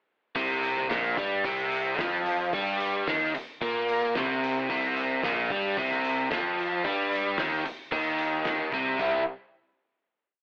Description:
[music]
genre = classic rock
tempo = 111 BPM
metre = 4/4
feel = straight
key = unclear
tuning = A4 = 443 Hz
[part]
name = biting overdriven guitar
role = riff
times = 0.4-9.2 s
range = Bb2 to E4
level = -29 LUFS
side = equal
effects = none
[part]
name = fuzz picked electric bass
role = bass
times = 0.4-9.2 s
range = Bb1 to Bb2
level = -35 LUFS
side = equal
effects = overdrive
[part]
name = cloth-damped thuddy drum kit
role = drums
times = 0.4-9.1 s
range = crash cymbal, hi-hat, kick drum, snare drum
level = -39 LUFS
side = equal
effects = none
[sound]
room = light reverb, small room ambience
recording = telephone sound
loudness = -28 LUFS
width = mono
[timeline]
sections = 0.4-9.0 riff; 9.0-10.4 final chord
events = none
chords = 0.4 C5; 9.0 C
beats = | 0.35 0.90 1.44 1.99 | 2.53 3.07 3.62 4.16 | 4.70 5.24 5.78 6.32 | 6.86 7.39 7.93 8.46 | 9.00

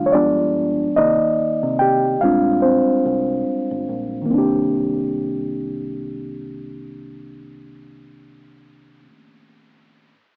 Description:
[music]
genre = R&B, neo-soul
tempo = 72 BPM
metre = 4/4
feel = swing 57% on 16ths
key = C minor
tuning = A4 = 441 Hz
[part]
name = mellow reed electric piano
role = accompaniment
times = 0.0-10.1 s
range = Eb3 to G5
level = -20 LUFS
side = equal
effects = none
[part]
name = deep dub fingered electric bass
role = bass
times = 0.0-9.1 s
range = F1 to C3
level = -32 LUFS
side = equal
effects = none
[sound]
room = moderate booth ambience, RT60 0.2 s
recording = home recording on cassette, AM radio sound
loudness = -19 LUFS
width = mono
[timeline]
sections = 0.0-4.3 A section; 4.3-7.6 B section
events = reed electric piano solo 0.0-4.3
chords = 0.1 G7b9; 1.0 Cm9; 2.2 Bb13; 4.3 Cm9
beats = 0.12 | 0.96 1.79 2.62 3.46 | 4.29 5.12 5.96 6.79

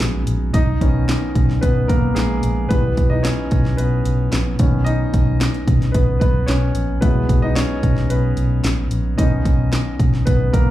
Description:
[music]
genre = piano-driven pop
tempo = 111 BPM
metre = 4/4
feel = straight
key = B major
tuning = A4 = 441 Hz
[part]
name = clear concert grand piano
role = accompaniment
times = 0.0-10.7 s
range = D#3 to D#5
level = -22 LUFS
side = left 1 dB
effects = slapback echo
[part]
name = vintage muted fingered electric bass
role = bass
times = 0.0-10.7 s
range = A#1 to B1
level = -18 LUFS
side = equal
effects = none
[part]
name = house drum kit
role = drums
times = 0.0-10.7 s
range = handclaps, hi-hat, kick drum, snare drum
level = -19 LUFS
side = equal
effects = overdrive
[sound]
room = little or no reverb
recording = live gig heard through the venue's PA, club reverb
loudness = -15 LUFS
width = side -14 dB against mid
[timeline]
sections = 0.0-10.7 A section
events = grand piano solo 0.0-10.7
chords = 0.0 Eadd9; 0.5 Badd9; 2.7 Em/B; 4.6 Badd9; 7.0 Eadd9/B; 9.2 Badd9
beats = 0.00 | 0.54 1.08 1.62 2.16 | 2.70 3.24 3.78 4.32 | 4.86 5.40 5.94 6.48 | 7.02 7.56 8.10 8.64 | 9.19 9.72 10.27

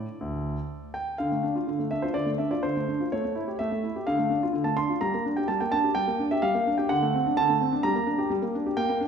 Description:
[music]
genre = classical-period piano sonatina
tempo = 126 BPM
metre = 4/4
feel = rubato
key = D minor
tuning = A4 = 438 Hz
[part]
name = warm concert grand piano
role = solo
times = 0.0-9.1 s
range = D2 to C6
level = -24 LUFS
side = equal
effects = none
[sound]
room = wet recital hall reverb, RT60 1.8 s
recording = recorded in a church or concert hall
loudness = -24 LUFS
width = side -6 dB against mid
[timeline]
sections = 0.0-1.2 A section; 1.2-9.1 A section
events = none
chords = 0.0 N.C.; 1.2 Dm; 3.1 A7; 4.1 Dm; 5.0 Gm; 6.9 D7; 7.8 Gm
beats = 0.20 0.70 | 1.20 1.68 2.16 2.64 | 3.11 3.59 4.06 4.54 | 5.01 5.49 5.96 6.43 | 6.90 7.37 7.83 8.30 | 8.78

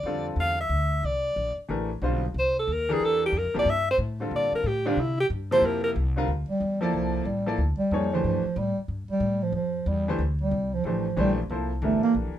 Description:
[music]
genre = modal jazz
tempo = 184 BPM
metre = 4/4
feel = swing 64% on 8ths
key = D minor from 6.3 s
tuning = A4 = 440 Hz
[part]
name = clear alto saxophone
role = melody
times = 0.0-5.9 s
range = D4 to F5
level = -24 LUFS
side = equal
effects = none
[part]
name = upright bass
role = bass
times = 0.0-12.4 s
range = G1 to C3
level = -29 LUFS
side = equal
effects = none
[part]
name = clear baby grand piano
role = accompaniment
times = 0.1-12.3 s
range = C3 to D5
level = -29 LUFS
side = left 1 dB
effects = none
[part]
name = breathy bass clarinet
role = second line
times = 6.5-12.1 s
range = F3 to Bb3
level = -25 LUFS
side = right 2 dB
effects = none
[sound]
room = moderate studio ambience, RT60 0.4 s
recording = minimal, uncompressed stereo recording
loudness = -23 LUFS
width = side -11 dB against mid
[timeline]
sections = 0.0-6.3 A section; 6.3-12.4 A section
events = alto saxophone solo 0.0-6.3; bass clarinet solo 6.3-12.4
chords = 0.0 G13sus4; 1.0 C13sus4; 6.3 D9sus4; 11.5 C9sus4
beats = 0.06 0.38 0.71 | 1.04 1.37 1.70 2.02 | 2.35 2.68 3.01 3.33 | 3.66 3.99 4.32 4.64 | 4.97 5.30 5.62 5.95 | 6.28 6.61 6.93 7.26 | 7.59 7.91 8.24 8.57 | 8.89 9.22 9.55 9.88 | 10.20 10.53 10.86 11.18 | 11.51 11.84 12.16

